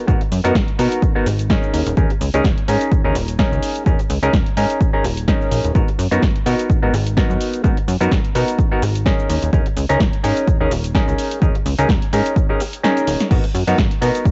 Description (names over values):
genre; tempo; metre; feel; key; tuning
filtered disco house; 127 BPM; 4/4; swing 55% on 16ths; G# minor; A4 = 440 Hz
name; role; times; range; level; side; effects
mellow clav; accompaniment; 0.0-14.3 s; B3 to A#4; -23 LUFS; equal; phaser, sidechain pumping, cassette tape
plucky analog bass; bass; 0.1-14.3 s; D#1 to B2; -23 LUFS; equal; tube saturation, sidechain pumping
electronic kick drum; drums; 0.1-14.3 s; none; -20 LUFS; equal; cassette tape
house drum kit; drums; 0.1-14.3 s; crash cymbal, hi-hat, shaker, snare drum; -28 LUFS; equal; sidechain pumping on perc, cassette tape, sidechain pumping on hats, sidechain pumping on cymbals
room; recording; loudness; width
light reverb, digital ambience; home recording on cassette, nothing above 7.9 kHz; -17 LUFS; mono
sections
0.0-14.3 A section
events
kick drops out 12.8-13.3; drum fill 12.8-13.3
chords
0.0 G#m7; 1.7 D#7sus4; 5.8 G#m7; 9.3 D#7sus4; 13.3 G#m7